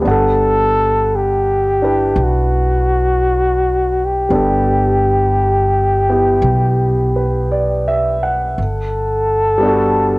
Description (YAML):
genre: jazz ballad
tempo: 56 BPM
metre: 4/4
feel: swing 68% on 8ths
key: G major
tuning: A4 = 441 Hz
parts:
  - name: warm concert grand piano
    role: accompaniment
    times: 0.0-10.2 s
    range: G3 to F#5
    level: -19 LUFS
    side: equal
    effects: cassette tape
  - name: breathy flugelhorn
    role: melody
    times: 0.1-10.2 s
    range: F#4 to A4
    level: -15 LUFS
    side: left 1 dB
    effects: none
  - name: upright bass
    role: bass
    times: 0.1-10.2 s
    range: G1 to B1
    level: -18 LUFS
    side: equal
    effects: none
room: moderate studio reverb, RT60 0.6 s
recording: home recording on cassette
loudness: -13 LUFS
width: side -23 dB against mid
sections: 0.0-8.6 A section; 8.6-10.2 B section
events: none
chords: 0.0 Gmaj9; 8.6 Gmaj7